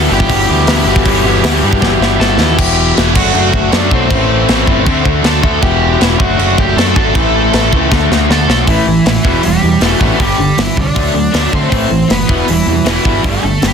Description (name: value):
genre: punk rock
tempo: 158 BPM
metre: 4/4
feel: straight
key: E minor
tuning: A4 = 439 Hz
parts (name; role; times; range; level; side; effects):
- smooth overdriven lead guitar; melody; 0.0-13.7 s; E3 to A5; -17 LUFS; equal; none
- distorted electric guitar; riff; 0.0-13.7 s; G2 to G4; -16 LUFS; right 15 dB; distortion
- raw garage guitar; riff; 0.0-13.7 s; E2 to D4; -16 LUFS; left 14 dB; overdrive
- growling picked electric bass; bass; 0.0-13.7 s; E1 to D3; -16 LUFS; equal; overdrive
- tight metal drum kit; drums; 0.2-13.7 s; crash cymbal, hi-hat, kick drum, snare drum; -15 LUFS; equal; none
room: little or no reverb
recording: dense, heavily limited modern master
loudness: -9 LUFS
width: side -6 dB against mid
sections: 0.0-2.6 A section; 2.6-8.7 B section; 8.7-13.7 C section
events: drum fill 1.8-2.6, 7.9-8.7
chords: 0.0 Em/G; 2.6 Em; 3.1 D/F#; 4.1 Am; 4.9 D; 5.6 Em; 6.2 D/F#; 7.1 Am; 7.9 D; 8.7 A5; 9.2 Em; 10.2 G5; 11.0 D; 11.7 Am; 12.3 Em